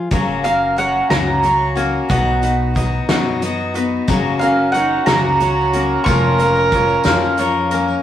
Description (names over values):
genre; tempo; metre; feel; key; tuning
indie folk with a building arrangement; 60 BPM (dotted quarters); 6/8; straight; F# major; A4 = 440 Hz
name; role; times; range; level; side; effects
picked steel-string acoustic guitar; accompaniment; 0.1-8.0 s; F#2 to A#4; -19 LUFS; left 4 dB; none
mandolin; arpeggios; 0.1-8.0 s; E#4 to F#5; -24 LUFS; right 3 dB; none
upright bass; bass; 0.1-7.9 s; E#1 to F#2; -22 LUFS; equal; none
loose indie drum kit; drums; 0.1-7.9 s; hi-hat, kick drum, snare drum; -22 LUFS; equal; none
mandolin; melody; 0.4-7.3 s; E#5 to C#6; -18 LUFS; right 2 dB; none
tambourine; percussion; 4.1-8.0 s; none; -37 LUFS; left 4 dB; none
dark fiddle; second line; 4.4-7.3 s; C#4 to A#4; -19 LUFS; right 3 dB; none
room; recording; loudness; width
wet stone room reverb, RT60 1.2 s; rough rehearsal-room recording, warm saturation, vinyl crackle; -14 LUFS; side -11 dB against mid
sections
0.1-8.0 A section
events
none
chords
0.1 F#; 2.1 B; 4.1 F#; 6.1 A#m/E#